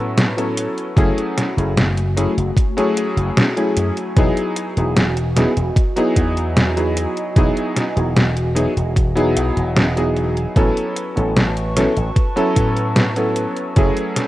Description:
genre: vaporwave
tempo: 75 BPM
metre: 4/4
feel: straight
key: E major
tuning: A4 = 439 Hz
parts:
  - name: warm electric grand piano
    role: accompaniment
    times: 0.0-14.3 s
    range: F#3 to A4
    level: -20 LUFS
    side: equal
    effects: lush chorus, analog delay
  - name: warbly tape-like pad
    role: sustained chords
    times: 0.0-14.3 s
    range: A3 to E6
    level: -27 LUFS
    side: equal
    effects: chorus, built-in reverb, vintage 12-bit sampler grit
  - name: slap bass with an envelope filter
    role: bass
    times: 0.0-13.9 s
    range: E1 to A2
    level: -20 LUFS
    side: equal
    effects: none
  - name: detuned 8-bit digital drum machine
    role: drums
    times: 0.2-14.3 s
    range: hi-hat, snare drum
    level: -18 LUFS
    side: equal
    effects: overdrive
  - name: electronic kick drum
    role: drums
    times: 1.0-13.9 s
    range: none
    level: -16 LUFS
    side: equal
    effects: overdrive
room: light reverb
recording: rough home demo mix, cassette tape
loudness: -15 LUFS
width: side -16 dB against mid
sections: 0.0-14.3 A section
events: none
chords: 0.0 A69; 1.0 F#m9; 4.2 Emaj9; 10.6 A69; 13.8 F#m9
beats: 0.17 | 0.96 1.76 2.56 3.37 | 4.17 4.96 5.76 6.57 | 7.37 8.16 8.96 9.77 | 10.56 11.37 12.16 12.96 | 13.77

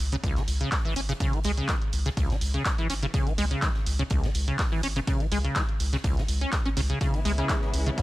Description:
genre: acid house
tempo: 124 BPM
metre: 4/4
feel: swing 53% on 16ths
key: C# minor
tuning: A4 = 436 Hz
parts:
  - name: round analog bass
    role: bass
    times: 0.0-7.9 s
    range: G#1 to C#2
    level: -28 LUFS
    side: equal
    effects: sidechain pumping
  - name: liquid acid bass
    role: riff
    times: 0.1-8.0 s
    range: C#2 to C#4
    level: -30 LUFS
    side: equal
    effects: analog chorus, sidechain pumping, analog delay
  - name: punchy analog drum machine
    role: drums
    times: 0.1-8.0 s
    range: handclaps, hi-hat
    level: -32 LUFS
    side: equal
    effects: small room ambience
  - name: electronic kick drum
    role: drums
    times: 0.2-8.0 s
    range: none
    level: -28 LUFS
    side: equal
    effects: small room ambience
  - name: oversized low-tuned drum kit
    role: drums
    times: 0.2-8.0 s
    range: hi-hat, snare drum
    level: -44 LUFS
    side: right 1 dB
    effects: sidechain pumping on hats, high-pass filter on hats, small room ambience, high-pass filter on snare, high-pass filter on room
  - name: dark chamber string section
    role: sustained chords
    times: 7.0-8.0 s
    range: C#3 to E4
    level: -35 LUFS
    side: left 1 dB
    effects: sidechain pumping
  - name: band-passed chord stab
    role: stabs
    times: 7.4-8.0 s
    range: B3 to G#4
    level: -34 LUFS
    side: left 2 dB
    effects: phaser, ensemble chorus, analog delay
room: studio reverb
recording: transformer saturation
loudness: -24 LUFS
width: side -17 dB against mid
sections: 0.0-8.0 A section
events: none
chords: 0.0 C#m7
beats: 0.24 0.72 | 1.20 1.69 2.17 2.65 | 3.14 3.62 4.11 4.59 | 5.07 5.56 6.04 6.53 | 7.01 7.49 7.98

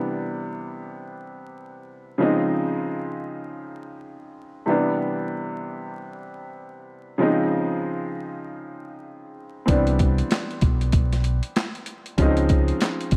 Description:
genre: hip hop, boom-bap hip-hop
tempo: 96 BPM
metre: 4/4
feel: swing 61% on 16ths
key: unclear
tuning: A4 = 440 Hz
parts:
  - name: warm upright piano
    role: accompaniment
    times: 0.0-13.2 s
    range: C3 to Eb4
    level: -28 LUFS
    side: equal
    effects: cassette tape, high-pass filter, low-pass filter
  - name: deep dub fingered electric bass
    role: bass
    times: 9.7-13.2 s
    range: B1 to Db2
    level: -24 LUFS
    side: equal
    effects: none
  - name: boom bap sampler-style drum kit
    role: drums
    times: 9.7-13.2 s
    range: handclaps, hi-hat, kick drum, snare drum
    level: -24 LUFS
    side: equal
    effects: none
room: light reverb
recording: dry, gritty hardware recording, vinyl crackle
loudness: -24 LUFS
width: mono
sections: 0.0-13.2 A section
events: none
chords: 0.0 Cmaj9; 2.2 Dbmaj9; 4.7 Cmaj9; 7.2 Dbmaj9; 9.7 Cmaj9; 12.2 Dbmaj9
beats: 0.31 0.94 1.56 | 2.19 2.81 3.44 4.06 | 4.68 5.31 5.93 6.56 | 7.18 7.81 8.44 9.06 | 9.69 10.31 10.94 11.56 | 12.19 12.81

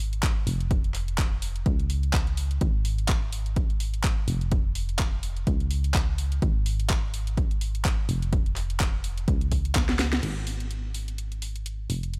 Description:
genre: piano house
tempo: 126 BPM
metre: 4/4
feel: swing 57% on 16ths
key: unclear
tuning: A4 = 439 Hz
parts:
  - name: solid FM bass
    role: bass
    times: 0.0-12.2 s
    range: F1 to Db2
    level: -31 LUFS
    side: equal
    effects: sidechain pumping
  - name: garage drum kit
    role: drums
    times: 0.1-12.2 s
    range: crash cymbal, handclaps, hi-hat, snare drum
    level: -34 LUFS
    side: equal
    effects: overdrive, small room ambience
  - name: electronic kick drum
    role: drums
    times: 0.2-9.9 s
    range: none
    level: -28 LUFS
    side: equal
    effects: overdrive, small room ambience
room: little or no reverb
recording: none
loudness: -27 LUFS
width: mono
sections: 0.0-10.2 A section; 10.2-12.2 B section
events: drum fill 9.8-10.2; band accent 10.1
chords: none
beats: 0.23 | 0.71 1.18 1.66 2.14 | 2.61 3.09 3.56 4.04 | 4.52 4.99 5.47 5.95 | 6.42 6.90 7.37 7.85 | 8.33 8.80 9.28 9.76 | 10.23 10.71 11.18 11.66 | 12.14

